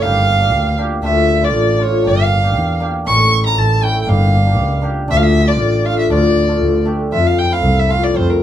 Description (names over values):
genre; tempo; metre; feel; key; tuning
klezmer; 118 BPM; 2/4; straight; D harmonic minor; A4 = 438 Hz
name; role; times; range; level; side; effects
dark violin; melody; 0.0-8.4 s; Bb4 to C#6; -17 LUFS; right 1 dB; none
cimbalom; accompaniment; 0.0-8.3 s; A3 to G4; -18 LUFS; left 1 dB; none
dark double bass; bass; 0.0-8.4 s; G1 to F2; -16 LUFS; equal; none
room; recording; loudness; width
light reverb; close, detailed microphones; -12 LUFS; side -10 dB against mid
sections
0.0-7.1 A section; 7.1-8.4 B section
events
none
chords
0.0 Gm; 1.0 Dm; 2.0 Gm; 3.1 A; 4.1 Gm; 5.1 Dm; 7.1 F